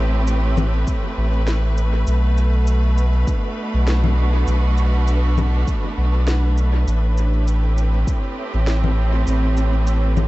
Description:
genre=ambient dub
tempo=100 BPM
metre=4/4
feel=swing 56% on 16ths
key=A dorian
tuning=A4 = 441 Hz
part: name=clear studio string section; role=sustained chords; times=0.0-10.3 s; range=A2 to B4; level=-25 LUFS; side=right 1 dB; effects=none
part: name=warm sub bass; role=bass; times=0.0-10.3 s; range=A1 to B1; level=-17 LUFS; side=equal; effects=none
part: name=electronic shaker, congas and snare drum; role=drums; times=0.3-10.3 s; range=none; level=-28 LUFS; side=left 3 dB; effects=small room ambience, dub echo
part: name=electronic kick drum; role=drums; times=0.9-8.2 s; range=none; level=-22 LUFS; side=equal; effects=small room ambience
room=digital ambience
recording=echo-heavy mix, nothing above 8.0 kHz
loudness=-16 LUFS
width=side -18 dB against mid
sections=0.0-10.3 A section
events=none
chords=0.0 Am7; 2.1 Bm7; 6.9 Am7

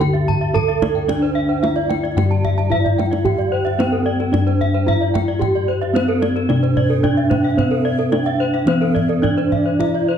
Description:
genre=Balinese gamelan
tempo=111 BPM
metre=4/4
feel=straight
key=D slendro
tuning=A4 = 440 Hz
part: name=gamelan-type bronze metallophone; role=melody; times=0.0-10.2 s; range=C4-45c to A4+25c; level=-20 LUFS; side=right 1 dB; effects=none
part: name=gamelan-type bronze metallophone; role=arpeggios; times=0.0-10.2 s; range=A4+25c to A5+25c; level=-24 LUFS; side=left 6 dB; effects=none
part: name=gamelan-type bossed gongs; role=bass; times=0.0-10.2 s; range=G2-35c to C5-45c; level=-20 LUFS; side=left 2 dB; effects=none
part: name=kendang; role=percussion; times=0.0-10.0 s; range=none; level=-24 LUFS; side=right 4 dB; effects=none
part: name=gamelan-type bronze metallophone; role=arpeggios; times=0.1-10.1 s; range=A4+25c to A5+25c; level=-26 LUFS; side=right 6 dB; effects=none
part: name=breathy low xiao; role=second line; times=1.5-10.2 s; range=C5-46c to G5-30c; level=-28 LUFS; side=right 6 dB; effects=none
room=moderate recital hall reverb, RT60 1.5 s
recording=dark, warm production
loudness=-15 LUFS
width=side -8 dB against mid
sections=0.0-10.2 A section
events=drum fill 2.8-3.2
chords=none

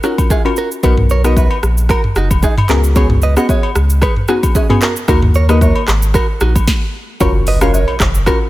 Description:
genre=afrobeats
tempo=113 BPM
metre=4/4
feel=swing 55% on 16ths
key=F# major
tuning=A4 = 440 Hz
part: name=soft round pluck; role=accompaniment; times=0.0-8.5 s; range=A#3 to A#4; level=-18 LUFS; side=left 2 dB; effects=chorus
part: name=direct-recorded clean electric guitar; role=riff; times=0.0-8.4 s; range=C#4 to F#5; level=-20 LUFS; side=right 5 dB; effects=spring reverb, digital delay
part: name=afro-pop drum kit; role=drums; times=0.0-8.4 s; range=handclaps, hi-hat, kick drum, rim click, shaker, snare drum, toms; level=-15 LUFS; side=equal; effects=none
part: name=agogo bells and woodblock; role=percussion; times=0.2-8.4 s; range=none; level=-24 LUFS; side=left 4 dB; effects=none
part: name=warm sub bass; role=bass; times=0.8-8.3 s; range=F#1 to D#2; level=-13 LUFS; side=equal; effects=none
part: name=impact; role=sound effects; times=7.3-8.5 s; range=none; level=-23 LUFS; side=equal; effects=none
room=little or no reverb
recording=none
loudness=-11 LUFS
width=side -16 dB against mid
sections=0.0-7.2 A section; 7.2-8.5 B section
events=stop 6.7-7.2; impact 7.2-8.5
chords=0.0 F#maj7; 0.8 Bmaj7; 2.7 C#7sus4; 5.1 D#m; 7.2 F#maj7

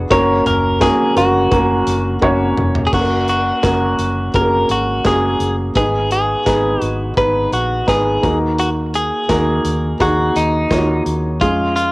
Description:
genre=piano-driven pop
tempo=85 BPM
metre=4/4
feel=straight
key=F# major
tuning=A4 = 440 Hz
part: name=felt-muted upright piano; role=accompaniment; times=0.0-11.9 s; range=G#2 to D5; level=-17 LUFS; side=equal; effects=cassette tape
part: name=vintage muted fingered electric bass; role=bass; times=0.0-11.9 s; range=E#1 to E#2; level=-21 LUFS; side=equal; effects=none
part: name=direct-recorded clean electric guitar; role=melody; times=0.1-11.9 s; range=D#4 to C#5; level=-18 LUFS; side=equal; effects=cassette tape
part: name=modern studio drum kit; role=drums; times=0.1-11.9 s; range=crash cymbal, handclaps, hi-hat, kick drum, snare drum, toms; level=-23 LUFS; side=equal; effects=cassette tape
room=light reverb, small room ambience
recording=home recording on cassette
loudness=-13 LUFS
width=side -22 dB against mid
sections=0.0-2.9 A section; 2.9-11.9 B section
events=drum fill 2.2-2.9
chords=0.1 F#; 5.8 G#m; 8.2 D#m; 11.4 C#/E#

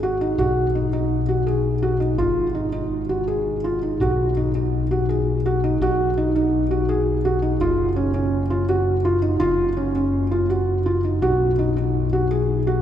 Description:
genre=contemporary instrumental, chamber music in an uneven meter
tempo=166 BPM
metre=5/4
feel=straight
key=unclear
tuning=A4 = 439 Hz
part: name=felt-muted upright piano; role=arpeggios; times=0.0-12.8 s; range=C#4 to G#4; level=-20 LUFS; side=right 1 dB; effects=none
part: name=overdriven fingered electric bass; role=bass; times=0.0-12.8 s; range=F#1 to B1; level=-23 LUFS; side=left 2 dB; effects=none
room=wet cathedral reverb, RT60 5.5 s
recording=recorded in a church or concert hall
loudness=-18 LUFS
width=side -10 dB against mid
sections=0.0-4.0 A section; 4.0-12.8 B section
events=none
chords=0.4 B; 2.2 G#5; 4.0 B; 7.6 F#5; 11.2 B

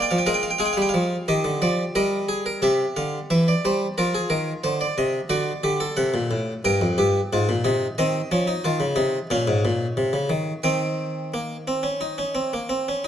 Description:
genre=classical, baroque-style 3-part fugue for harpsichord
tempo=90 BPM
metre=4/4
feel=straight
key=unclear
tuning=A4 = 443 Hz
part: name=harpsichord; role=solo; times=0.0-13.1 s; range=F2 to G5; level=-21 LUFS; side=equal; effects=none
room=moderate recital hall reverb, RT60 1.6 s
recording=close, detailed microphones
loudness=-21 LUFS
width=side -10 dB against mid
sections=0.0-2.6 A section; 2.6-13.1 B section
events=none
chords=0.0 Bb7; 1.3 Eb; 2.6 C; 4.0 F5; 5.3 D7; 6.6 Gm; 8.0 Cm/Eb; 9.3 Bbm; 10.7 Eb

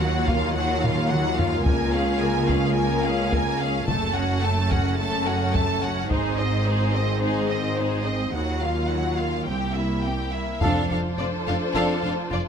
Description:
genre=cinematic, epic orchestral film score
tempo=108 BPM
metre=4/4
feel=straight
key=Db major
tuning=A4 = 440 Hz
part: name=rich studio violin section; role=melody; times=0.0-12.4 s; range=C5 to A5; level=-29 LUFS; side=left 1 dB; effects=none
part: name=warm symphonic violin section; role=second line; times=0.0-12.4 s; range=E4 to C5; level=-32 LUFS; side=left 3 dB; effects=none
part: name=rich symphonic viola section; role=accompaniment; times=0.0-12.4 s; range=Gb3 to Eb4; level=-31 LUFS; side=right 2 dB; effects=none
part: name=dark French horn section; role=sustained chords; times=0.0-11.9 s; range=Gb3 to F4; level=-30 LUFS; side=left 5 dB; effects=none
part: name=rich symphonic cello section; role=bass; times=0.0-12.4 s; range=C2 to Ab2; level=-28 LUFS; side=right 2 dB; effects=none
part: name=rich symphonic double bass section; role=bass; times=0.0-12.4 s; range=F1 to Eb2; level=-29 LUFS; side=right 3 dB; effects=none
part: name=taiko ensemble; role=drums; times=0.3-7.2, 10.6-11.1 s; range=none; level=-27 LUFS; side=left 1 dB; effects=none
part: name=bright trombone section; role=sustained chords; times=10.6-12.0 s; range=F3 to C4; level=-33 LUFS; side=right 3 dB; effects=none
part: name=warm studio string section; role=sustained chords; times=10.6-12.5 s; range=D4 to C5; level=-29 LUFS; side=left 2 dB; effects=none
part: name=mellow trumpet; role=stabs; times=10.6-11.9 s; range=A4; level=-31 LUFS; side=right 3 dB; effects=none
part: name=timpani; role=percussion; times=10.6-11.4 s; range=F2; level=-30 LUFS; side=equal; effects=none
room=light reverb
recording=close, detailed microphones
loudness=-21 LUFS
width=side -7 dB against mid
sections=0.0-10.6 A section; 10.6-12.5 B section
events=drum fill 0.8-1.7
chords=0.0 Ebmadd9; 1.7 Db6; 3.9 Gbm; 6.1 Ab; 8.3 Ebmadd9; 9.5 C7; 10.6 F6

